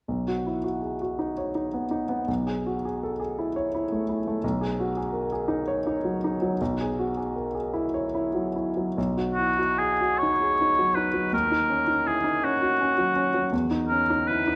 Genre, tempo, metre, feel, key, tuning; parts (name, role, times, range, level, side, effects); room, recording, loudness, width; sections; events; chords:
classical, impressionist duo for oboe and grand piano; 47-57 BPM (dotted quarters); 6/8; rubato; B major; A4 = 440 Hz
clear grand piano; accompaniment; 0.1-14.6 s; B1 to C#5; -28 LUFS; equal
clear oboe; melody; 9.3-14.6 s; F#4 to C#5; -25 LUFS; equal
moderate scoring stage reverb, RT60 1.7 s; -26 LUFS; mono
0.1-9.0 A section; 9.0-14.6 B section
0.1 Badd9; 2.3 Amaj7/B; 4.4 B69; 6.6 F#9sus4/B; 9.0 B6; 11.3 D#m7; 13.5 Emaj7(no3)